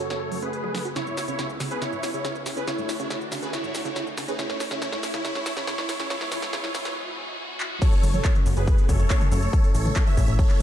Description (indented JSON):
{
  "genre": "uplifting trance",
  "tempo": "140 BPM",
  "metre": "4/4",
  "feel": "straight",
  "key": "F# minor",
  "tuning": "A4 = 440 Hz",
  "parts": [
    { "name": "supersaw chords", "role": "melody", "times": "0.0-10.6 s", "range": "E4 to E5", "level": "-30 LUFS", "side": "right 1 dB", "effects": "phaser, sidechain pumping, low-pass filter, digital delay" },
    { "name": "filtered supersaw swell", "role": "sustained chords", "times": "0.0-10.6 s", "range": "C#2 to F#4", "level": "-36 LUFS", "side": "equal", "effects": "sidechain pumping" },
    { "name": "wide unison pluck", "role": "arpeggios", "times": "0.0-6.9 s", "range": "G#2 to F#4", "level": "-37 LUFS", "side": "right 4 dB", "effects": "sidechain pumping, digital delay" },
    { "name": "big-room dance drum kit", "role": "drums", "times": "0.0-10.6 s", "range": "crash cymbal, handclaps, hi-hat, shaker, snare drum, toms", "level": "-32 LUFS", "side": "equal", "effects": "high-pass filter on snare, high-pass filter on hats, high-pass filter on toms, high-pass filter on perc, high-pass filter on cymbals, high-pass filter on room" },
    { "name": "riser", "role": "sound effects", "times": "0.0-7.8 s", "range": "none", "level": "-38 LUFS", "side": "left 1 dB", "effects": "none" },
    { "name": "electronic kick drum", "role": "drums", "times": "7.8-10.5 s", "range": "none", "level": "-20 LUFS", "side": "equal", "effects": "none" },
    { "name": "plucky analog bass", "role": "bass", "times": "8.0-10.4 s", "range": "F#1 to A1", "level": "-23 LUFS", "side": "equal", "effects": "sidechain pumping" }
  ],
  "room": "digital ambience",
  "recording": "dark, warm production, high-pass filter",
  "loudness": "-23 LUFS",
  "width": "side -11 dB against mid",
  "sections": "0.0-7.8 A section; 7.8-10.6 B section",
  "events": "build-up 0.0-7.8; drum fill 0.0-7.0, 7.6; riser 0.0-7.8; filter sweep on supersaw synth 0.0-7.8; filter sweep on synth arpeggio sound 0.0-7.8; filter sweep 0.0-7.8; break 7.0-7.8; drop 7.8-10.6",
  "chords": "0.0 F#m; 1.0 C#m7; 2.7 D; 4.4 A; 6.1 E/G#; 7.8 F#m; 9.5 A"
}